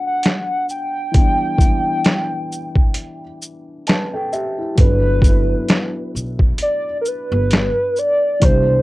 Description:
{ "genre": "lo-fi hip hop", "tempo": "66 BPM", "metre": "4/4", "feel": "swing 56% on 16ths", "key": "G major", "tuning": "A4 = 438 Hz", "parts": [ { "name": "warbly nostalgic lead", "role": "melody", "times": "0.0-8.8 s", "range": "Bb4 to G5", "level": "-19 LUFS", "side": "equal", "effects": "chorus, cassette tape" }, { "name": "felt-muted upright piano", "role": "accompaniment", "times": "0.0-8.8 s", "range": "B2 to A5", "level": "-25 LUFS", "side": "left 1 dB", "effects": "cassette tape" }, { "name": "boom bap sampler-style drum kit", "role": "drums", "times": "0.2-8.7 s", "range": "hi-hat, kick drum, shaker, snare drum", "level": "-15 LUFS", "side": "equal", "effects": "cassette tape" }, { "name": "upright bass", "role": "bass", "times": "4.8-8.8 s", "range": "G1 to C2", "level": "-18 LUFS", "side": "equal", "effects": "tube saturation" } ], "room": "moderate booth ambience, RT60 0.2 s", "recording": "home recording on cassette", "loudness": "-15 LUFS", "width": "side -18 dB against mid", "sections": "0.0-8.8 A section", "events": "break 0.0-4.8; felt piano fill 3.4-4.8", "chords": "0.0 Gmaj9/F#; 1.1 Em7; 4.8 Gmaj9" }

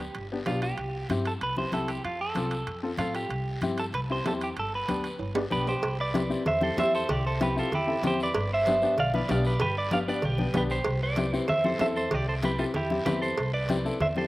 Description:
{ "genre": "latin, cumbia", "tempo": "191 BPM", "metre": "4/4", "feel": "straight", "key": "C major", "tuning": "A4 = 440 Hz", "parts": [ { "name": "clean electric guitar", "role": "melody", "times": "0.0-14.3 s", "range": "E4 to F5", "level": "-29 LUFS", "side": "right 2 dB", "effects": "spring reverb, slapback echo" }, { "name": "upright bass", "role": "bass", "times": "0.0-14.3 s", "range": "G1 to A2", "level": "-32 LUFS", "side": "equal", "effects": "none" }, { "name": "guiro", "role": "percussion", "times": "0.0-14.3 s", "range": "none", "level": "-44 LUFS", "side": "left 2 dB", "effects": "slapback echo" }, { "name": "timbales and cowbell", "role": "percussion", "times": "0.1-14.2 s", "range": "none", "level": "-34 LUFS", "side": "right 3 dB", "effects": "none" }, { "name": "clear upright piano", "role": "accompaniment", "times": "0.3-14.2 s", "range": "B3 to A4", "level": "-31 LUFS", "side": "left 3 dB", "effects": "none" }, { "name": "congas", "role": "percussion", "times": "0.5-14.3 s", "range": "none", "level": "-34 LUFS", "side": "left 1 dB", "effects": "none" } ], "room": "little or no reverb", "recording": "recorded outdoors, with no room sound", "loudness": "-25 LUFS", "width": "side -18 dB against mid", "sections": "0.0-5.8 A section; 5.8-14.3 B section", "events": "drum fill 5.2-5.8", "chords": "0.0 G; 0.8 C; 2.0 F; 3.3 C; 4.6 G; 5.8 C; 8.3 G; 10.9 C" }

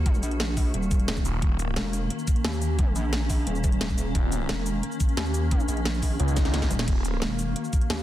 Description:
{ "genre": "dark technical drum and bass", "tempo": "176 BPM", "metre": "4/4", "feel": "straight", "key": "Eb phrygian", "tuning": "A4 = 440 Hz", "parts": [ { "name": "swarming drone", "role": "sustained chords", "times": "0.0-8.0 s", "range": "Eb3 to Gb4", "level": "-32 LUFS", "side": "left 1 dB", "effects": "built-in reverb, sidechain pumping" }, { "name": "pulsing pluck wobble bass", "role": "bass", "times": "0.0-8.0 s", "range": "Eb1 to Eb2", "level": "-27 LUFS", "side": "equal", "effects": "chorus" }, { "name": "drum and bass drum kit", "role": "drums", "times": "0.1-8.0 s", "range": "cabasa, crash cymbal, hi-hat, snare drum", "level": "-32 LUFS", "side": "equal", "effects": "none" }, { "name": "electronic kick drum", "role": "drums", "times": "0.1-7.8 s", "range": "none", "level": "-24 LUFS", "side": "equal", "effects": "none" }, { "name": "phased detuned saw bass", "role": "bass", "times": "1.3-1.8, 4.2-7.2 s", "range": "Eb1 to Db2", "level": "-26 LUFS", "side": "equal", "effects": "phaser, overdrive, sidechain pumping" }, { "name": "swell", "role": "sound effects", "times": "6.3-6.9 s", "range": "none", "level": "-38 LUFS", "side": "left 2 dB", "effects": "none" } ], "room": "little or no reverb", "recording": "dense, heavily limited modern master", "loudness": "-23 LUFS", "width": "side -13 dB against mid", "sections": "0.0-8.0 A section", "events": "swell 6.3-6.9; drum fill 6.4-6.9", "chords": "0.0 Ebm" }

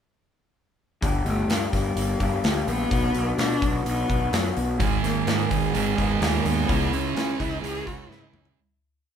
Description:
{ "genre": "quiet-loud alternative rock", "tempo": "127 BPM", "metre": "4/4", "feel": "straight", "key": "unclear", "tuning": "A4 = 436 Hz", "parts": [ { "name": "electric guitar through a small old amp", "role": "arpeggios", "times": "1.0-8.6 s", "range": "G2 to G#4", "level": "-30 LUFS", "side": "left 2 dB", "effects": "none" }, { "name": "fuzz picked electric bass", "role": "bass", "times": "1.0-8.5 s", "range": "G1 to C#3", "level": "-27 LUFS", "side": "equal", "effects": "overdrive" }, { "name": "big rock drum kit", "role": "drums", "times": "1.0-8.6 s", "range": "hi-hat, kick drum, snare drum, toms", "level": "-28 LUFS", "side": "left 1 dB", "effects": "none" }, { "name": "rich cello", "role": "melody", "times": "1.3-8.5 s", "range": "G3 to G#4", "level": "-28 LUFS", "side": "left 2 dB", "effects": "none" }, { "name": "thick fuzz guitar", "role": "riff", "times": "4.8-8.6 s", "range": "G#2 to C#4", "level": "-26 LUFS", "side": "right 8 dB", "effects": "distortion" } ], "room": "moderate stone room reverb, RT60 0.9 s", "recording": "band playing live in one room", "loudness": "-22 LUFS", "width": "side -8 dB against mid", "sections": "1.0-8.6 pre-chorus", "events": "fade-out 6.7-8.6; drum fill 8.1-8.6", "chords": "1.0 Gm; 2.9 Bm; 4.8 G#m; 6.7 C#m" }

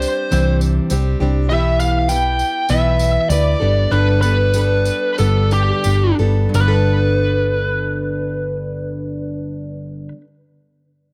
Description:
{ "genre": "folk rock and heartland rock", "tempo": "86-101 BPM", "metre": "4/4", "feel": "straight", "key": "G major", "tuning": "A4 = 440 Hz", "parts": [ { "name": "bluesy overdriven lead guitar", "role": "melody", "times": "0.0-10.1 s", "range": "G4 to G5", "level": "-22 LUFS", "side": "equal", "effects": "distortion, slapback echo" }, { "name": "picked plugged-in steel-string acoustic guitar", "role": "accompaniment", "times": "0.0-10.3 s", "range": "G2 to B4", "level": "-24 LUFS", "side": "equal", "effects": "none" }, { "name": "hollow-body short-scale picked electric bass", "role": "bass", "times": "0.0-10.1 s", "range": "G1 to D2", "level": "-20 LUFS", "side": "equal", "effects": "none" }, { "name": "tambourine", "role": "percussion", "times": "0.0-6.9 s", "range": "none", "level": "-33 LUFS", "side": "equal", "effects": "none" } ], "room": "light reverb", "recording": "dark, warm production", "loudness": "-17 LUFS", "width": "mono", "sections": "0.0-6.5 A section; 6.5-9.3 B section", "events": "slowing down 1.5-6.5", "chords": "0.0 Cadd9; 1.5 Em/B; 3.6 Gadd9" }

